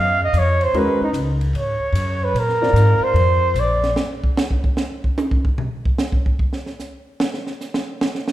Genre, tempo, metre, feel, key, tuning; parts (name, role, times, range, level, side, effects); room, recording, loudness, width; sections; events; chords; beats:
modal jazz; 149 BPM; 4/4; swing 66% on 8ths; A4 = 440 Hz
breathy trumpet; melody; 0.0-3.9 s; D#4 to E#5; -19 LUFS; right 1 dB
upright bass; bass; 0.0-3.9 s; A#1 to A#2; -19 LUFS; left 1 dB
compact cocktail drum kit; drums; 0.3-8.3 s; hi-hat, kick drum, ride cymbal, snare drum, toms; -22 LUFS; right 1 dB
warm grand piano; accompaniment; 0.7-3.1 s; G#3 to D5; -23 LUFS; left 1 dB
wet recital hall reverb, RT60 1.4 s; recorded in a church or concert hall; -17 LUFS; side -14 dB against mid
0.0-4.0 A section; 4.0-8.3 A section
trumpet solo 0.0-4.0; drum solo 4.0-8.3
0.0 G#7sus4; 2.3 A#9; 4.0 N.C.
0.33 | 0.73 1.14 1.54 1.94 | 2.35 2.75 3.15 3.56 | 3.96 4.37 4.77 5.17 | 5.58 5.98 6.39 6.79 | 7.20 7.60 8.00